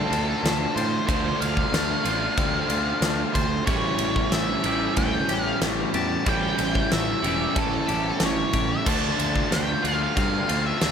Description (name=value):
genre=rock, shoegaze and dream pop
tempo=92 BPM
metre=4/4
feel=straight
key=D minor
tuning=A4 = 440 Hz
part: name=octave-fuzz lead guitar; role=melody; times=0.0-10.9 s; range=A4 to A5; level=-28 LUFS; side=equal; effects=distortion, digital delay
part: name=twangy electric guitar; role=arpeggios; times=0.0-10.9 s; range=E3 to G4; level=-34 LUFS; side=left 7 dB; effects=wide subtle chorus, digital delay
part: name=cranked stack guitar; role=riff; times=0.0-10.9 s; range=A2 to G4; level=-30 LUFS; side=left 1 dB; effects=overdrive
part: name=crunchy overdriven guitar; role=riff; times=0.0-10.9 s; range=A2 to F4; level=-30 LUFS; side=right 9 dB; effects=reverse reverb
part: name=overdriven electric guitar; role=riff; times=0.0-10.9 s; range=A2 to F4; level=-32 LUFS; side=left 11 dB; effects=wide subtle chorus
part: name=fuzz picked electric bass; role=bass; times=0.1-10.9 s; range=E1 to A2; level=-29 LUFS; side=equal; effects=overdrive
part: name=huge arena drum kit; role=drums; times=0.1-10.9 s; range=crash cymbal, kick drum, ride cymbal, snare drum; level=-27 LUFS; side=equal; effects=none
room=small room ambience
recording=none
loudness=-21 LUFS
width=side -7 dB against mid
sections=0.0-10.9 A section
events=none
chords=0.0 Dm7; 3.7 A7; 8.9 Dm7